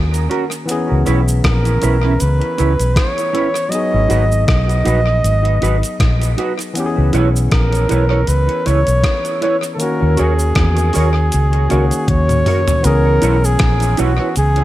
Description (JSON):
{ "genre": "lovers rock reggae", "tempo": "79 BPM", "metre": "4/4", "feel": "swing 56% on 16ths", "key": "C# dorian", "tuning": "A4 = 440 Hz", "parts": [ { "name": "warm flugelhorn", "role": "melody", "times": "0.0-14.6 s", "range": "F#4 to D#5", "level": "-19 LUFS", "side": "right 1 dB", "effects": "tape echo" }, { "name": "barky tine electric piano", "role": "accompaniment", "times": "0.0-14.6 s", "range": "D#3 to G#4", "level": "-22 LUFS", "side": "left 2 dB", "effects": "none" }, { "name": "vintage muted fingered electric bass", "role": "bass", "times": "0.0-14.6 s", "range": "G#1 to E2", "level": "-15 LUFS", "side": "equal", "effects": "none" }, { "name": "crisp 8-bit digital drum machine", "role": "drums", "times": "0.1-14.6 s", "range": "hi-hat, kick drum, rim click, toms", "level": "-19 LUFS", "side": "equal", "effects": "overdrive, gated reverb, tape echo" }, { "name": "cabasa", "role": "percussion", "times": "0.1-14.6 s", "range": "none", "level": "-30 LUFS", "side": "right 3 dB", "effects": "none" }, { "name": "mellow electric guitar", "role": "stabs", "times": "0.3-14.3 s", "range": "C#4 to C#5", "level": "-22 LUFS", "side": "right 3 dB", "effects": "analog chorus, tape echo" } ], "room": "light reverb, digital ambience", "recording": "none", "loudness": "-13 LUFS", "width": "side -15 dB against mid", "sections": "0.0-12.8 A section; 12.8-14.6 B section", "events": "drum fill 12.1-12.8", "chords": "0.0 D#m7; 0.7 C#m7; 3.7 G#m7; 6.8 C#m7; 9.8 D#m7; 12.8 C#m7" }